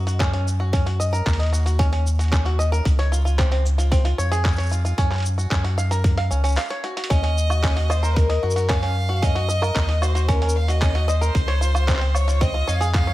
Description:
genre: folktronica.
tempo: 113 BPM.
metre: 4/4.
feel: straight.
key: Eb dorian.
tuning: A4 = 442 Hz.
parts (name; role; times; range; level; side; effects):
bluegrass banjo; arpeggios; 0.0-13.1 s; C4 to F5; -27 LUFS; equal; digital delay.
warm sub bass; bass; 0.0-13.1 s; Db2 to Gb2; -20 LUFS; equal; none.
lo-fi sampler-style drum kit; drums; 0.1-13.1 s; handclaps, hi-hat, shaker, woodblock; -30 LUFS; equal; none.
electronic kick drum; drums; 0.2-13.0 s; none; -22 LUFS; equal; overdrive.
clear violin; melody; 7.1-13.1 s; Bb4 to F5; -26 LUFS; left 1 dB; digital delay.
room: little or no reverb.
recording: none.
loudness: -18 LUFS.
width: side -16 dB against mid.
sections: 0.0-13.1 A section.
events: break 6.6-7.1; drum fill 6.8.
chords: 0.0 Ebm7; 2.9 Dbmaj7; 5.0 Gbmaj7(no3); 7.1 Ebm7; 11.4 Dbmaj7.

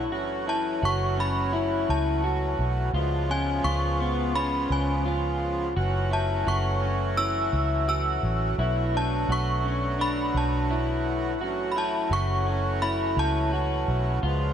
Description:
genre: dream pop.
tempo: 85 BPM.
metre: 4/4.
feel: straight.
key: F# minor.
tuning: A4 = 440 Hz.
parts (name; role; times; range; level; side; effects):
accordion; sustained chords; 0.0-14.5 s; C#3 to F#4; -32 LUFS; right 2 dB; shimmer reverb.
electric guitar through a small old amp; arpeggios; 0.0-14.5 s; B3 to F#4; -29 LUFS; left 2 dB; lush chorus, shimmer reverb, digital delay.
vintage muted fingered electric bass; bass; 0.0-14.5 s; F#1 to C#2; -27 LUFS; equal; none.
synth chime; melody; 0.5-13.8 s; G#5 to E6; -30 LUFS; equal; ensemble chorus, shimmer reverb, digital delay.
room: moderate huge ambient reverb, RT60 9.4 s.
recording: dark, warm production.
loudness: -23 LUFS.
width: side -9 dB against mid.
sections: 0.0-14.5 A section.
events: none.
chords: 0.1 F#m7; 2.9 C#7; 5.8 F#m7; 8.6 Bm7; 11.4 F#m7.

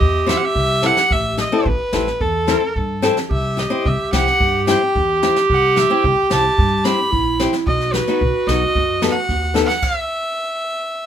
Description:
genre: klezmer.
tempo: 110 BPM.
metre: 4/4.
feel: straight.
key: unclear.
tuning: A4 = 439 Hz.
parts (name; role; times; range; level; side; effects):
rich violin; melody; 0.0-11.1 s; A4 to B5; -20 LUFS; equal; none.
mellow clarinet; second line; 0.0-9.8 s; E4 to A4; -20 LUFS; right 3 dB; none.
upright bass; bass; 0.0-9.6 s; A1 to G2; -22 LUFS; equal; none.
jazz brush drum kit; drums; 0.0-9.9 s; crash cymbal, kick drum, snare drum; -24 LUFS; equal; none.
flamenco guitar; accompaniment; 0.3-9.7 s; B3 to A4; -20 LUFS; left 5 dB; none.
room: moderate small room reverb, RT60 0.5 s.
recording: minimal, uncompressed stereo recording.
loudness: -15 LUFS.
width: side -9 dB against mid.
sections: 0.0-11.1 A section.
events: speeding up 0.0-11.1; stop 9.8-11.1.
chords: 0.0 Am; 3.3 C; 7.7 B; 9.8 N.C..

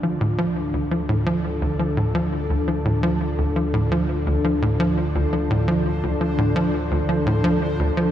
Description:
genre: ambient, sequencer-driven space music.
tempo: 85 BPM.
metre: 4/4.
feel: straight.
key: D minor.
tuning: A4 = 440 Hz.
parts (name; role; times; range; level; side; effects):
sweeping resonant pad; sustained chords; 0.0-8.1 s; D3 to A5; -25 LUFS; left 1 dB; chorus.
tight sequencer bass; riff; 0.0-8.1 s; D2 to F3; -21 LUFS; equal; wide subtle chorus, tape echo.
warm sub bass; bass; 0.0-8.1 s; D2; -28 LUFS; equal; none.
bubbling stepped-filter texture; texture; 0.0-8.1 s; D4 to D5; -39 LUFS; equal; chorus, built-in reverb.
room: wet cathedral reverb, RT60 6.0 s.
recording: in a vast, echoing space, cassette tape.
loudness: -19 LUFS.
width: side -11 dB against mid.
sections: 0.0-8.1 A section.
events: fade-in on synth texture 0.0-8.1.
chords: 0.0 Dm.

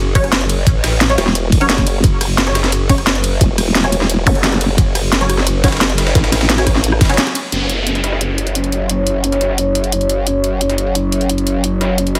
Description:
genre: dark technical drum and bass.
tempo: 175 BPM.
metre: 4/4.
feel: straight.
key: F# minor.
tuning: A4 = 440 Hz.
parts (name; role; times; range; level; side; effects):
growl bass; bass; 0.0-12.2 s; F#1 to A1; -20 LUFS; equal; chorus, tube saturation, sidechain pumping.
filtered dub chord stab; stabs; 0.2-7.5 s; F#3 to C#5; -24 LUFS; equal; phaser, ensemble chorus, dub echo.
breakbeat sampler-style drum kit; drums; 0.2-12.2 s; hi-hat, snare drum; -27 LUFS; equal; none.
drum and bass drum kit; drums; 0.2-12.2 s; hi-hat, ride cymbal, rim click, snare drum; -20 LUFS; equal; overdrive.
electronic kick drum; drums; 0.2-7.1 s; none; -16 LUFS; equal; overdrive.
formant-sweep wobble bass; bass; 1.2-7.0 s; E1 to A1; -18 LUFS; equal; chorus.
zap and downlifter; sound effects; 4.3-4.4, 7.5-10.3 s; none; -25 LUFS; equal; none.
sweeping resonant pad; sustained chords; 7.5-12.2 s; F#3 to C#5; -21 LUFS; equal; lush chorus, sidechain pumping.
room: light reverb, digital ambience.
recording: heavily compressed radio sound.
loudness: -15 LUFS.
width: mono.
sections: 0.0-7.5 A section; 7.5-12.2 B section.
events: drop 0.0-7.5; break 7.2-7.5; band accent 7.2; filter sweep on analog synth pad 7.5-12.2.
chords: 0.0 F#5.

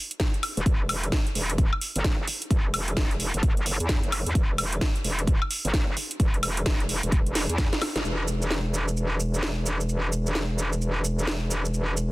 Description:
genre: bass house.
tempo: 130 BPM.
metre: 4/4.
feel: swing 62% on 16ths.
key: E minor.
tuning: A4 = 440 Hz.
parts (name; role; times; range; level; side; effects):
house drum kit; drums; 0.1-12.1 s; hi-hat, shaker, snare drum, woodblock; -29 LUFS; equal; none.
electronic kick drum; drums; 0.2-7.7 s; none; -24 LUFS; equal; none.
metallic wobble bass; bass; 0.6-12.1 s; E1 to E2; -27 LUFS; equal; chorus, tube saturation, sidechain pumping.
room: little or no reverb.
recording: dense, heavily limited modern master.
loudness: -23 LUFS.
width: side -19 dB against mid.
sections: 0.0-8.0 A section; 8.0-12.1 B section.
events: drum fill 7.4-8.0; band accent 7.9.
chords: none.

